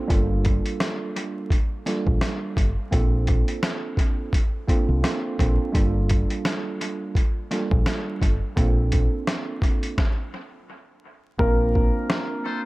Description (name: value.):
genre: hip hop, boom-bap hip-hop.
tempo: 85 BPM.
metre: 4/4.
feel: swing 56% on 16ths.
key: Bb major.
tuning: A4 = 440 Hz.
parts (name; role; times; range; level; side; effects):
tine electric piano; accompaniment; 0.0-12.7 s; G3 to Bb4; -28 LUFS; right 3 dB; medium stereo tremolo, cassette tape, high-pass filter, low-pass filter, dub echo.
deep dub fingered electric bass; bass; 0.1-11.9 s; G1 to C2; -23 LUFS; equal; none.
boom bap sampler-style drum kit; drums; 0.1-12.3 s; hi-hat, kick drum, snare drum; -23 LUFS; equal; dub echo.
dark upright piano; melody; 11.4-12.7 s; Bb3 to Bb4; -25 LUFS; left 1 dB; high-pass filter, low-pass filter, dub echo.
muted trumpet section; stabs; 12.4-12.6 s; F4 to C5; -30 LUFS; left 4 dB; high-pass filter, low-pass filter, dub echo.
room: little or no reverb.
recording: echo-heavy mix, vinyl crackle.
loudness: -21 LUFS.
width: side -20 dB against mid.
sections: 0.0-11.4 A section; 11.4-12.7 B section.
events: stop 10.0-11.4; hi-hats muted 11.4-12.7.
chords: 0.1 Gm7; 2.9 Bbmaj7; 5.7 Gm7; 8.6 Bbmaj9.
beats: | 0.10 0.80 1.51 2.21 | 2.92 3.63 4.33 5.04 | 5.74 6.45 7.16 7.86 | 8.57 9.27 9.98 10.69 | 11.39 12.10.